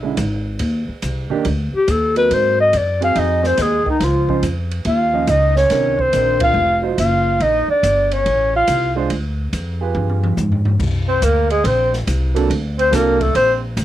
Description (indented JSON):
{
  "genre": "jazz, small-group swing and bop",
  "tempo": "141 BPM",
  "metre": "4/4",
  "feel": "swing 67% on 8ths",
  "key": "unclear",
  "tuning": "A4 = 437 Hz",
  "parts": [
    { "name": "warm grand piano", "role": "accompaniment", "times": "0.0-13.2 s", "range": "D3 to Eb5", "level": "-22 LUFS", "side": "right 8 dB", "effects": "cassette tape" },
    { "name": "upright bass", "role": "bass", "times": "0.0-13.8 s", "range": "F1 to Ab2", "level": "-20 LUFS", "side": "equal", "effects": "none" },
    { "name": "open jazz drum kit", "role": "drums", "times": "0.2-13.8 s", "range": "crash cymbal, hi-hat, kick drum, ride cymbal, snare drum, toms", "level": "-27 LUFS", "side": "equal", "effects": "none" },
    { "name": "breathy clarinet", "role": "melody", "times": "1.8-13.5 s", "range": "Eb4 to F5", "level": "-16 LUFS", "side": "left 3 dB", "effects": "cassette tape" },
    { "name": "mellow tenor saxophone", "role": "second line", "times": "3.2-13.6 s", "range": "Eb3 to F4", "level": "-22 LUFS", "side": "right 8 dB", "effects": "cassette tape" }
  ],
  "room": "moderate studio reverb, RT60 0.5 s",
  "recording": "home recording on cassette",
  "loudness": "-15 LUFS",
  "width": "side -13 dB against mid",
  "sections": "0.0-10.8 A section; 10.8-13.8 B section",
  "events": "band accent 6.3; drum fill 9.9-10.8",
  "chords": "0.0 E6; 0.6 Ebmaj7(no3); 2.3 Ab7; 4.0 Dbadd9; 5.7 Cm9; 6.5 F5; 7.4 Bbmaj9; 9.1 Ddim; 9.9 G7b9; 10.8 D7b13",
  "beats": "0.17 | 0.60 1.02 1.45 1.87 | 2.30 2.72 3.15 3.57 | 4.00 4.42 4.85 5.28 | 5.70 6.12 6.55 6.97 | 7.40 7.83 8.25 8.67 | 9.10 9.52 9.95 10.37 | 10.80 11.22 11.65 12.07 | 12.49 12.92 13.34 13.77"
}